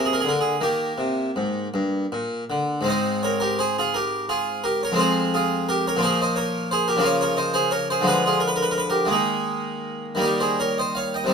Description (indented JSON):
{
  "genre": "classical, baroque-style suite movement for harpsichord",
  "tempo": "52-60 BPM (dotted quarters)",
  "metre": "6/8",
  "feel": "rubato",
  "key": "Ab major",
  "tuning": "A4 = 440 Hz",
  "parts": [
    { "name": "harpsichord", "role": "solo", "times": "0.0-11.3 s", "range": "F2 to G5", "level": "-20 LUFS", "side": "equal", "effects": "none" }
  ],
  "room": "moderate studio reverb, RT60 0.9 s",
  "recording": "minimal, uncompressed stereo recording",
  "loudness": "-20 LUFS",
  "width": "side -6 dB against mid",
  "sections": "0.0-2.9 A section; 2.9-11.3 A section",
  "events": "none",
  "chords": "0.0 Bb; 0.6 Eb; 2.9 Ab; 5.0 Fm; 6.0 Bb5; 7.0 Bbm/Db; 8.0 Ddim; 9.1 Ebsus4; 10.2 Eb"
}